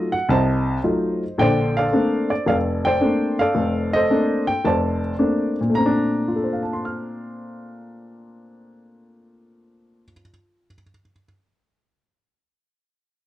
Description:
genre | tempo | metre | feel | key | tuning
jazz | 110 BPM | 4/4 | swing 68% on 8ths | Bb major | A4 = 440 Hz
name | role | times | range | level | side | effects
dark baby grand piano | solo | 0.0-11.2 s | F1 to F6 | -19 LUFS | equal | none
room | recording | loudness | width
light reverb | dry, close 1970s-style studio recording | -18 LUFS | side -14 dB against mid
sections
0.0-5.7 A section; 5.7-10.1 B section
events
none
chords
0.0 F7b9; 1.4 Bbmaj9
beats
0.29 0.83 | 1.38 1.92 2.47 3.01 | 3.56 4.10 4.65 5.19 | 5.74 6.28 6.83 7.37 | 7.92 8.46 9.01 9.55

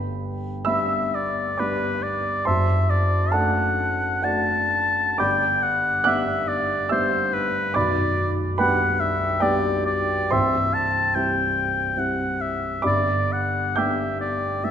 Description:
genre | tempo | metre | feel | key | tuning
classical, romantic duo for oboe and grand piano | 57-74 BPM | 3/4 | rubato | G major | A4 = 440 Hz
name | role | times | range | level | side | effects
dark baby grand piano | accompaniment | 0.0-14.7 s | B0 to G6 | -23 LUFS | right 1 dB | none
warm oboe | melody | 0.7-14.7 s | B4 to A5 | -23 LUFS | left 2 dB | none
room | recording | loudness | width
wet scoring stage reverb, RT60 1.6 s | none | -20 LUFS | side -8 dB against mid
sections
0.0-14.7 A section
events
none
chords
0.0 G; 2.5 D7/F#; 5.2 G; 7.8 G/B; 10.3 C; 12.8 G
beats
0.66 1.59 | 2.47 3.33 4.24 | 5.19 6.05 6.90 | 7.75 8.59 9.41 | 10.32 11.15 11.97 | 12.84 13.78 14.63

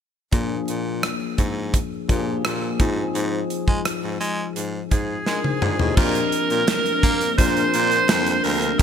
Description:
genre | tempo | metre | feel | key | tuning
1980s-style pop | 85 BPM | 4/4 | straight | Bb mixolydian | A4 = 440 Hz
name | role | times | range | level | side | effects
bell-like tine electric piano | accompaniment | 0.3-8.8 s | F3 to Eb5 | -26 LUFS | left 5 dB | wide subtle chorus
breathy baritone saxophone | bass | 0.3-8.8 s | D2 to Bb3 | -26 LUFS | right 1 dB | none
modern studio drum kit | drums | 0.3-8.8 s | crash cymbal, hi-hat, kick drum, rim click, snare drum, toms | -22 LUFS | right 1 dB | gated reverb
edgy alto saxophone | melody | 4.9-8.8 s | Eb4 to C5 | -22 LUFS | right 3 dB | none
string machine, violas | sustained chords | 6.0-8.8 s | Bb3 to D4 | -28 LUFS | equal | ensemble chorus
group handclap | percussion | 6.7-8.3 s | none | barely audible | none | none
room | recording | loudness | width
moderate lush hall reverb, RT60 2.7 s | bright 1980s-style digital production | -19 LUFS | side -8 dB against mid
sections
0.3-6.0 A section; 6.0-8.8 B section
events
drum fill 5.3-6.0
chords
0.3 Bb7; 2.8 Fm7/Ab; 6.0 Bbadd9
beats
| 0.33 1.03 1.74 2.44 | 3.15 3.86 4.56 5.27 | 5.97 6.68 7.38 8.09 | 8.80

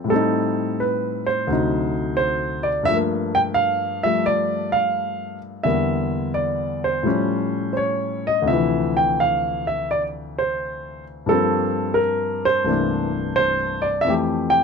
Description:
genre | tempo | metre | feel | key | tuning
solo jazz | 86 BPM | 4/4 | swing 68% on 8ths, rubato | unclear | A4 = 440 Hz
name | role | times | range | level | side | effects
warm grand piano | solo | 0.0-14.6 s | C2 to G5 | -19 LUFS | equal | none
room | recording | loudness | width
light reverb | none | -19 LUFS | side -5 dB against mid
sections
0.0-14.6 A section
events
none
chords
0.1 Am7b5; 1.5 D7b9; 2.9 Gm9; 5.6 Em7b5; 7.1 A7alt; 8.5 Dm9; 11.3 Gm11; 12.7 C13; 14.1 Fmaj9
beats
| 0.11 0.81 1.50 2.19 | 2.88 3.57 4.26 4.95 | 5.64 6.34 7.05 7.77 | 8.48 9.19 9.89 10.59 | 11.29 11.98 12.68 13.38 | 14.07

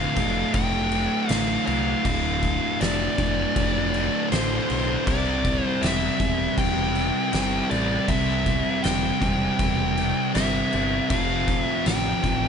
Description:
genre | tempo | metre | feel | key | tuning
stoner and doom metal | 80 BPM | 4/4 | straight | unclear | A4 = 439 Hz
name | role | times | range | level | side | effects
fuzz lead guitar | melody | 0.0-12.5 s | C5 to G5 | -27 LUFS | equal | distortion, ping-pong delay
thick fuzz guitar | riff | 0.0-12.5 s | D2 to C4 | -25 LUFS | right 1 dB | distortion
growling picked electric bass | bass | 0.0-12.5 s | D1 to C2 | -29 LUFS | equal | overdrive
oversized low-tuned drum kit | drums | 0.2-12.4 s | crash cymbal, kick drum, snare drum | -26 LUFS | left 1 dB | none
room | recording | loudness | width
little or no reverb | nothing above 10.7 kHz | -21 LUFS | side -7 dB against mid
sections
0.0-12.5 A section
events
none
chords
0.0 Dm; 5.1 C; 11.1 F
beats
0.55 1.30 | 2.05 2.81 3.56 4.32 | 5.07 5.83 6.58 7.33 | 8.09 8.84 9.60 10.36 | 11.11 11.87

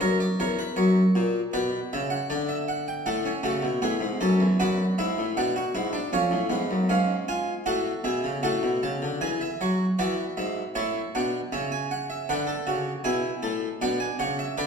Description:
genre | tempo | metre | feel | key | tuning
classical, baroque-style 4-part fugue for harpsichord | 78 BPM | 4/4 | straight | unclear | A4 = 442 Hz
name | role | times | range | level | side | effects
harpsichord | solo | 0.0-14.7 s | E2 to A5 | -24 LUFS | equal | none
room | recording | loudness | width
wet recital hall reverb, RT60 1.4 s | heard from further back in the room | -24 LUFS | side -6 dB against mid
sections
0.0-9.2 A section; 9.2-14.7 B section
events
none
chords
0.0 F#7; 1.5 Bm; 3.1 F#m/A; 4.6 G#m7b5/F#; 6.1 C#7/E#; 7.7 F#m/A; 9.2 E7; 10.8 A; 13.8 G#dim/B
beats
| 0.01 0.78 1.54 2.31 | 3.07 3.84 4.60 5.37 | 6.13 6.91 7.68 8.45 | 9.22 9.99 10.76 11.53 | 12.30 13.06 13.83 14.59

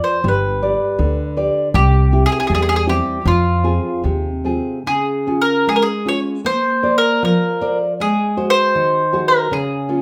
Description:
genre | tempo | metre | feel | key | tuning
fado-style ballad | 79 BPM | 2/4 | rubato | unclear | A4 = 440 Hz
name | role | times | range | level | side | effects
mandolin | melody | 0.0-10.0 s | F4 to Db5 | -20 LUFS | equal | none
nylon-string guitar | accompaniment | 0.0-10.0 s | C3 to D5 | -22 LUFS | equal | none
upright bass | bass | 0.2-4.6 s | G1 to F2 | -20 LUFS | equal | none
room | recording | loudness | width
moderate large studio reverb, RT60 0.8 s | band playing live in one room | -17 LUFS | mono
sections
0.0-4.9 A section; 4.9-10.0 A section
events
none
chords
0.2 G; 1.7 C; 3.3 Fm; 4.9 Db; 6.5 Bbadd9; 8.0 Ab7; 9.5 Db6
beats
| 0.25 1.00 | 1.75 2.51 | 3.26 4.05 | 4.87 5.68 | 6.46 7.23 | 7.99 8.75 | 9.51

